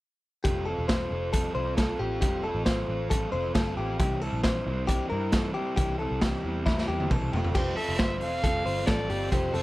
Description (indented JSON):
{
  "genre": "jangly indie pop",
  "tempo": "135 BPM",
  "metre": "4/4",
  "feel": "straight",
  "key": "F major",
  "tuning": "A4 = 437 Hz",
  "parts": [
    { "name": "direct-recorded clean electric guitar", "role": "arpeggios", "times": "0.4-9.6 s", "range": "E4 to C5", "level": "-32 LUFS", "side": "left 3 dB", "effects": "tape echo" },
    { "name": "raw garage drum kit", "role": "drums", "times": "0.4-9.6 s", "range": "crash cymbal, hi-hat, kick drum, snare drum, toms", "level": "-27 LUFS", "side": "equal", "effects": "none" },
    { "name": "raw garage guitar", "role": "accompaniment", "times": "0.5-9.6 s", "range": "C3 to A4", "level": "-33 LUFS", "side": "right 2 dB", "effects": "overdrive" },
    { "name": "vintage muted picked electric bass", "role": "bass", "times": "0.5-9.6 s", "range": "E1 to G2", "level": "-33 LUFS", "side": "equal", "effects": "none" },
    { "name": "dark violin", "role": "melody", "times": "7.5-9.6 s", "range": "C5 to F5", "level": "-32 LUFS", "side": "right 1 dB", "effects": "none" }
  ],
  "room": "little or no reverb",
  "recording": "none",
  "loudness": "-25 LUFS",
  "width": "side -18 dB against mid",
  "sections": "0.4-7.5 A section; 7.5-9.6 B section",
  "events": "drum fill 6.7-7.5",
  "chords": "0.4 Fadd9; 4.0 C; 7.3 Fadd9",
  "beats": "| 0.44 0.89 1.33 1.77 | 2.22 2.66 3.11 3.55 | 4.00 4.44 4.88 5.33 | 5.77 6.21 6.66 7.10 | 7.54 7.99 8.43 8.88 | 9.32"
}